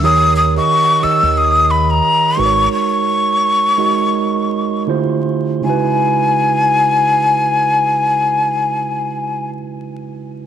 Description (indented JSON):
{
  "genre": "R&B",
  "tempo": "77-91 BPM",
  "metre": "4/4",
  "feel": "swing 58% on 16ths",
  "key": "C# dorian",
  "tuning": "A4 = 443 Hz",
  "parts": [
    { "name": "breathy jazz flute", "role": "melody", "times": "0.0-9.5 s", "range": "G#5 to E6", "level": "-14 LUFS", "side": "left 2 dB", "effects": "none" },
    { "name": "mellow tine electric piano", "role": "accompaniment", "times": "0.0-10.5 s", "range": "C#3 to D#5", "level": "-18 LUFS", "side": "right 6 dB", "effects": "medium stereo tremolo" },
    { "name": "deep dub fingered electric bass", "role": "bass", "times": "0.0-2.7 s", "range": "G#1 to D#2", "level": "-18 LUFS", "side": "left 1 dB", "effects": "transformer saturation" }
  ],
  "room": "moderate echo chamber reverb, RT60 1.9 s",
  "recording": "1960s-style stereo, vinyl crackle",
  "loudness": "-12 LUFS",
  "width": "side -9 dB against mid",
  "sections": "0.0-5.6 A section; 5.6-8.7 B section",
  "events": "slowing down 0.0-5.6",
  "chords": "0.0 D#7; 2.4 G#7sus4; 4.9 Dm11; 5.6 C#m11"
}